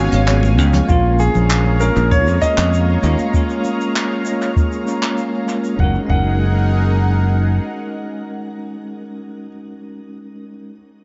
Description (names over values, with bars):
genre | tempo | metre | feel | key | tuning
sunset chillout | 98 BPM | 4/4 | straight | unclear | A4 = 442 Hz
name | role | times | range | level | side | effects
warm grand piano | melody | 0.0-9.5 s | E#4 to F#5 | -25 LUFS | equal | tape echo, shimmer reverb
bell-like tine electric piano | accompaniment | 0.0-10.8 s | G#3 to E#5 | -25 LUFS | equal | low-pass filter, analog delay, shimmer reverb
lush unison pad | sustained chords | 0.0-9.0 s | D#4 to A#5 | -29 LUFS | equal | chorus, phaser, shimmer reverb
modern bright fingered electric bass | bass | 0.0-7.6 s | F#1 to E#2 | -17 LUFS | equal | none
jazz brush drum kit | drums | 0.1-5.8 s | handclaps, hi-hat, shaker | -28 LUFS | equal | analog delay
congas | percussion | 0.1-3.3 s | none | -29 LUFS | equal | none
electronic kick drum | drums | 0.9-6.3 s | none | -19 LUFS | equal | none
room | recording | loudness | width
moderate spring reverb, RT60 1.6 s, studio reverb | echo-heavy mix, nothing above 7.8 kHz | -16 LUFS | mono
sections
0.9-5.8 A section; 5.8-8.2 B section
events
filter sweep on tine electric piano 0.9-5.8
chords
0.0 C#7; 0.9 A#m7; 5.8 F#69